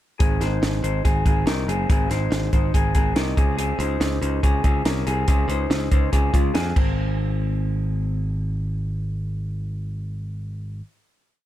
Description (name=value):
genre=jangly indie pop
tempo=142 BPM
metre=4/4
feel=straight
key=Ab major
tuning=A4 = 440 Hz
part: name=electric guitar through a small old amp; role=arpeggios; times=0.2-8.2 s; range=Ab3 to C5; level=-26 LUFS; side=left 2 dB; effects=none
part: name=modern bright picked electric bass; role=bass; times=0.2-10.8 s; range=Gb1 to F2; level=-24 LUFS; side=equal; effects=none
part: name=compact cocktail drum kit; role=drums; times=0.2-6.9 s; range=crash cymbal, hi-hat, kick drum, snare drum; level=-21 LUFS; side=equal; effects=none
room=little or no reverb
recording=dark, warm production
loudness=-20 LUFS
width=side -13 dB against mid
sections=0.2-7.0 verse; 7.0-10.3 final hit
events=none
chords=0.2 Ab; 3.4 Dbmaj7(no3); 6.8 Ab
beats=| 0.20 0.62 1.05 1.47 | 1.89 2.31 2.74 3.16 | 3.58 4.01 4.43 4.86 | 5.28 5.70 6.12 6.55 | 6.97 7.39 7.81 8.24 | 8.66 9.08 9.50 9.92